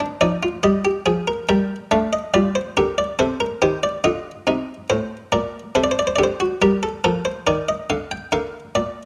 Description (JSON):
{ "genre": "classical, baroque-style 3-part fugue for harpsichord", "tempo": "70 BPM", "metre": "4/4", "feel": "straight", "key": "unclear", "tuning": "A4 = 440 Hz", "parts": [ { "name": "buff-stop harpsichord", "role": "solo", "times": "0.0-9.1 s", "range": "A2 to G5", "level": "-21 LUFS", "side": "equal", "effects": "none" } ], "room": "moderate recital hall reverb, RT60 1.4 s", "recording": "close, detailed microphones", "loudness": "-21 LUFS", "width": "mono", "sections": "0.0-8.3 A section", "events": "none", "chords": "0.0 Cm (rootless); 1.5 Gm; 3.2 Adim/C; 4.9 D7(no3)/A; 6.6 Gm; 8.3 Bb" }